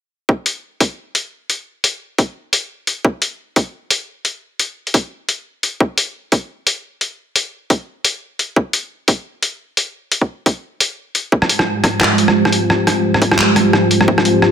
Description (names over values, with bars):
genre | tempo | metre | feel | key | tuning
half-time drum and bass | 174 BPM | 4/4 | swing 58% on 16ths, half-time | F minor | A4 = 440 Hz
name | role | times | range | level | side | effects
electronic kick drum | drums | 0.3-14.2 s | none | -14 LUFS | equal | high-pass filter on kick
boom bap sampler-style drum kit | drums | 0.5-14.5 s | handclaps, hi-hat, rim click | -15 LUFS | left 1 dB | none
dark analog pad | sustained chords | 11.6-14.5 s | Ab3 to C5 | -14 LUFS | right 1 dB | chorus, vintage 12-bit sampler grit, sidechain pumping
room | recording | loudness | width
moderate digital room reverb, RT60 1.1 s, digital ambience | none | -15 LUFS | side -8 dB against mid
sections
0.3-14.5 A section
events
none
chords
0.3 Fmadd9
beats
| 0.29 0.63 0.98 1.32 | 1.67 2.01 2.36 2.70 | 3.05 3.39 3.74 4.08 | 4.43 4.77 5.12 5.46 | 5.81 6.15 6.50 6.84 | 7.19 7.53 7.88 8.22 | 8.56 8.91 9.26 9.60 | 9.94 10.29 10.63 10.98 | 11.32 11.67 12.01 12.36 | 12.70 13.05 13.39 13.74 | 14.08 14.43